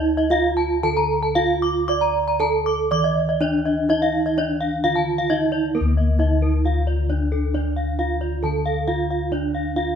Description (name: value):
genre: Balinese gamelan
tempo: 114-134 BPM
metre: 4/4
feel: straight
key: D pelog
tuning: A4 = 440 Hz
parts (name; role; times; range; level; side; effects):
- gamelan-type bronze metallophone; melody; 0.0-10.0 s; Bb3 to D5; -22 LUFS; right 4 dB; none
- gamelan-type bronze metallophone; arpeggios; 0.0-9.9 s; A4 to D6; -24 LUFS; left 4 dB; none
- gamelan-type bossed gongs; bass; 0.0-10.0 s; D2 to D5; -24 LUFS; left 1 dB; none
room: moderate stone room reverb, RT60 1.1 s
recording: band playing live in one room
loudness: -18 LUFS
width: side -7 dB against mid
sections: 0.0-5.8 A section; 5.8-10.0 B section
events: none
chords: none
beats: 0.30 0.83 1.35 | 1.88 2.40 2.91 3.41 | 3.90 4.37 4.84 5.30 | 5.75 6.20 6.64 7.09 | 7.54 7.98 8.43 8.87 | 9.32 9.77